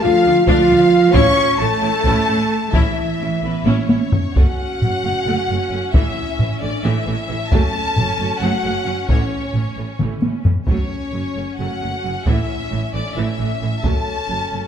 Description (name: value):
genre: cinematic, epic orchestral film score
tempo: 266 BPM (eighths)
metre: 7/8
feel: straight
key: F# minor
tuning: A4 = 441 Hz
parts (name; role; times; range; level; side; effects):
- clear symphonic violin section; melody; 0.0-14.7 s; B4 to C#6; -25 LUFS; left 2 dB; none
- concert flute; second line; 0.0-4.1 s; E5 to C#6; -25 LUFS; left 3 dB; none
- warm symphonic violin section; second line; 0.0-14.7 s; C#4 to C#6; -29 LUFS; left 2 dB; none
- warm chamber viola section; accompaniment; 0.0-14.6 s; E3 to F4; -27 LUFS; right 1 dB; none
- dark French horn section; sustained chords; 0.0-14.7 s; B3 to C#5; -21 LUFS; equal; none
- clear symphonic cello section; bass; 0.0-14.6 s; F#2 to C#4; -25 LUFS; right 3 dB; none
- rich symphonic double bass section; bass; 0.0-14.6 s; F#1 to D2; -24 LUFS; right 3 dB; none
- taiko ensemble; drums; 0.5-14.3 s; none; -18 LUFS; equal; none
room: moderate scoring stage reverb, RT60 1.5 s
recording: none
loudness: -15 LUFS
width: side -8 dB against mid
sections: 0.0-4.4 A section; 4.4-14.7 B section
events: drum fill 3.7-4.4, 10.0-10.7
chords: 0.0 Dm; 1.1 A; 4.4 F#m; 5.9 A; 7.5 F#m; 9.1 A; 10.7 F#m; 12.3 A; 13.8 F#m